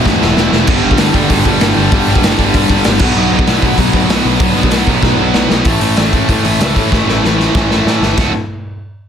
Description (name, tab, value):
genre	punk rock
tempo	192 BPM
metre	4/4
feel	straight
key	unclear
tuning	A4 = 440 Hz
part	cranked stack guitar	riff	0.0-8.3 s	D2 to B3	-17 LUFS	left 13 dB	overdrive
part	crunchy overdriven guitar	riff	0.0-5.5 s	E2 to B4	-17 LUFS	right 1 dB	none
part	distorted electric guitar	riff	0.0-8.3 s	D2 to F#4	-17 LUFS	right 14 dB	overdrive
part	fuzz picked electric bass	bass	0.1-8.3 s	D1 to A2	-17 LUFS	equal	overdrive
part	raw garage drum kit	drums	0.1-8.3 s	crash cymbal, hi-hat, kick drum, snare drum	-14 LUFS	equal	none
room	little or no reverb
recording	dense, heavily limited modern master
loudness	-9 LUFS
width	side -8 dB against mid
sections	0.0-5.7 A section; 5.7-8.2 B section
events	drum fill 0.1-0.7, 5.0-5.7, 6.9-8.2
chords	0.0 Em; 0.7 G; 3.0 Bm; 5.7 A5; 8.2 D